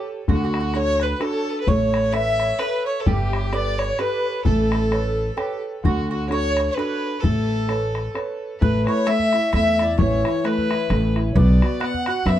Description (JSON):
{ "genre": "celtic folk, Celtic waltz", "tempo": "130 BPM", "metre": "3/4", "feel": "swing 56% on 8ths", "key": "A mixolydian", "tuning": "A4 = 440 Hz", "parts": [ { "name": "rich fiddle", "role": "melody", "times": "0.0-12.4 s", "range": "F#4 to F#5", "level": "-25 LUFS", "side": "left 2 dB", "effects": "tape echo" }, { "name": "mandolin", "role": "second line", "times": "0.0-12.4 s", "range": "F#4 to F#5", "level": "-31 LUFS", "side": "right 5 dB", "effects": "none" }, { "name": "mellow wooden flute", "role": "second line", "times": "0.0-12.4 s", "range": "E4 to G5", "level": "-29 LUFS", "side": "left 1 dB", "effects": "none" }, { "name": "warm concert grand piano", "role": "accompaniment", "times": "0.0-12.4 s", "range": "D3 to C#5", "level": "-25 LUFS", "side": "right 1 dB", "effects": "none" }, { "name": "upright bass", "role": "bass", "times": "0.3-12.4 s", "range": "G1 to F#2", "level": "-22 LUFS", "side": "equal", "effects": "none" }, { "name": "bodhran", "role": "percussion", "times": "0.3-12.4 s", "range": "none", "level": "-25 LUFS", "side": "left 2 dB", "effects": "none" } ], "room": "light reverb", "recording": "dark, warm production", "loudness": "-18 LUFS", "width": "side -12 dB against mid", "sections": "0.0-8.6 A section; 8.6-12.4 B section", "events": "none", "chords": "0.3 D; 1.7 Aadd9; 3.1 Gadd9; 4.5 Aadd9; 5.8 D; 7.2 Aadd9; 11.4 Bm", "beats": "| 0.29 0.76 1.22 | 1.68 2.14 2.60 | 3.06 3.53 3.99 | 4.45 4.91 5.38 | 5.84 6.30 6.76 | 7.23 7.69 8.15 | 8.61 9.07 9.53 | 9.98 10.44 10.90 | 11.35 11.81 12.26" }